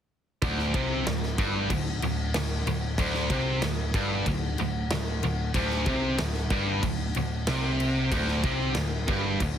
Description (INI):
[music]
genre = hard rock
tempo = 94 BPM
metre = 4/4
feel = straight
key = unclear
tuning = A4 = 441 Hz
[part]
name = tight distorted guitar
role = riff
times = 0.4-9.6 s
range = D2 to C3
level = -28 LUFS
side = equal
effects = distortion
[part]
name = hollow-body short-scale picked electric bass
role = bass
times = 0.4-9.6 s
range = D1 to C2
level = -31 LUFS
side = equal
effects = none
[part]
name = big rock drum kit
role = drums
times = 0.4-9.6 s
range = crash cymbal, kick drum, snare drum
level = -30 LUFS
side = equal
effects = none
[sound]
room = light reverb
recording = heavily compressed radio sound, multiband compression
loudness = -25 LUFS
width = side -9 dB against mid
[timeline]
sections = 0.4-9.6 A section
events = none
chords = 0.4 D7sus4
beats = | 0.43 1.07 1.71 2.35 | 2.98 3.62 4.27 4.91 | 5.55 6.19 6.83 7.47 | 8.12 8.76 9.41